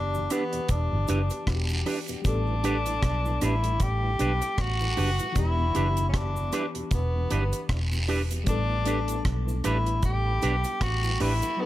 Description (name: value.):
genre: lovers rock reggae.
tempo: 77 BPM.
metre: 4/4.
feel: swing 57% on 16ths.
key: unclear.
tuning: A4 = 440 Hz.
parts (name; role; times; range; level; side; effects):
warm tenor saxophone; melody; 0.0-11.7 s; B3 to G4; -30 LUFS; left 1 dB; tape echo.
FM electric piano with tremolo; accompaniment; 0.0-11.7 s; E3 to A4; -36 LUFS; left 4 dB; phaser, tape echo.
vintage muted fingered electric bass; bass; 0.0-11.4 s; E1 to B1; -27 LUFS; equal; none.
tonewheel organ; accompaniment; 0.1-11.5 s; E2 to E4; -40 LUFS; right 2 dB; none.
cabasa and guiro; percussion; 0.1-11.6 s; none; -39 LUFS; right 1 dB; tape echo.
electric guitar with an envelope filter; stabs; 0.3-11.3 s; D4 to B4; -31 LUFS; right 3 dB; none.
deep reggae drum kit; drums; 0.3-11.6 s; hi-hat, kick drum, rim click; -30 LUFS; equal; tape echo.
room: light reverb, studio ambience.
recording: none.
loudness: -24 LUFS.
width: side -14 dB against mid.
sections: 0.0-11.7 A section.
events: none.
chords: 0.0 Em7; 2.2 A9sus4; 5.4 Em7; 8.5 A9sus4.